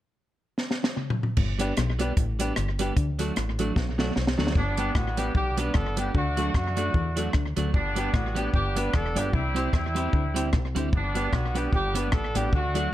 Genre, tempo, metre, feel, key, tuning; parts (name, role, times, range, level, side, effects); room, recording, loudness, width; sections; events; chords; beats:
ska; 151 BPM; 4/4; swing 56% on 8ths; G major; A4 = 436 Hz
compact cocktail drum kit; drums; 0.6-12.8 s; crash cymbal, hi-hat, kick drum, rim click, snare drum, toms; -26 LUFS; equal; slapback echo
mellow electric guitar; riff; 1.4-12.7 s; E2 to F#3; -35 LUFS; left 6 dB
fingered electric bass; bass; 1.4-12.9 s; E1 to F#2; -29 LUFS; equal
clean electric guitar; accompaniment; 1.6-12.9 s; F#3 to G4; -32 LUFS; right 5 dB; slapback echo
warm upright piano; stabs; 1.6-12.9 s; D4 to C5; -35 LUFS; left 4 dB
clear horn section; melody; 4.6-12.9 s; G3 to B4; -29 LUFS; equal; slapback echo
small room ambience; -23 LUFS; side -14 dB against mid
0.0-1.4 A section; 1.4-4.6 B section; 4.6-12.9 C section
drum fill 0.6-1.4, 3.8-4.6
0.0 N.C.; 1.4 G; 3.0 D; 4.6 G; 6.1 D; 7.7 G; 9.3 C; 10.9 G
0.18 0.58 0.97 | 1.37 1.77 2.17 2.57 | 2.96 3.36 3.76 4.16 | 4.55 4.95 5.35 5.75 | 6.15 6.55 6.94 7.34 | 7.74 8.14 8.54 8.94 | 9.34 9.73 10.13 10.53 | 10.93 11.33 11.73 12.13 | 12.53 12.93